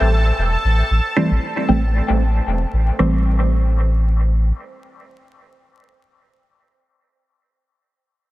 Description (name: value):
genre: dub techno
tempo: 115 BPM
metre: 4/4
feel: swing 56% on 16ths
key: A minor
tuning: A4 = 441 Hz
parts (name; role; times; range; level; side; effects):
- pure sine sub bass; bass; 0.0-4.5 s; E1 to A1; -16 LUFS; equal; none
- bubbling stepped-filter texture; texture; 0.0-3.0 s; A4 to A5; -25 LUFS; right 1 dB; chorus, built-in reverb
- filtered dub chord stab; stabs; 1.2-7.2 s; E3 to C4; -21 LUFS; right 1 dB; phaser, vintage 12-bit sampler grit, dub echo
room: light reverb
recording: dense, heavily limited modern master, vinyl crackle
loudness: -15 LUFS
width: side -17 dB against mid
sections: 0.0-3.0 A section; 3.0-7.2 B section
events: none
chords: 0.0 A5; 3.0 Am7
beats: 0.38 | 0.90 1.42 1.95 2.47 | 2.99 3.51 4.03 4.55 | 5.08 5.60 6.12 6.64